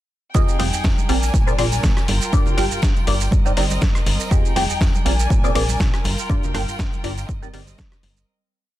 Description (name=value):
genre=filtered disco house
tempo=121 BPM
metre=4/4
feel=swing 54% on 16ths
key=F dorian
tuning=A4 = 437 Hz
part: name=funky polysynth comp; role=accompaniment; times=0.3-7.6 s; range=C4 to G5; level=-24 LUFS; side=equal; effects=chorus, phaser, sidechain pumping
part: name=warm studio violin section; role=sustained chords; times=0.3-8.3 s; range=C4 to Ab5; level=-28 LUFS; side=equal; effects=sidechain pumping
part: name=plucky analog bass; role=bass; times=0.3-8.2 s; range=F1 to Bb2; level=-23 LUFS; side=equal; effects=sidechain pumping
part: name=electronic kick drum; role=drums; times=0.3-7.9 s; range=none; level=-20 LUFS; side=equal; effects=none
part: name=tambourine and congas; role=percussion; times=0.3-8.3 s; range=none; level=-32 LUFS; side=right 4 dB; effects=sidechain pumping on perc
part: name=dusty soul sampler-style drum kit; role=drums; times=0.4-8.3 s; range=hi-hat, rim click, shaker, snare drum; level=-26 LUFS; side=equal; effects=overdrive
room=digital ambience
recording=dense, heavily limited modern master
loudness=-17 LUFS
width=side -14 dB against mid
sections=0.3-8.3 drop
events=drop 0.3-8.3; fade-out 5.6-8.3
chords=0.3 Fm9; 1.1 Bb7; 2.1 Gm7; 3.3 Cm7/G; 4.3 Fm9; 5.1 Bb7; 6.0 Gm7; 7.3 Cm7/G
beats=| 0.35 0.84 1.34 1.83 | 2.33 2.83 3.32 3.82 | 4.31 4.81 5.30 5.80 | 6.30 6.79 7.29 7.79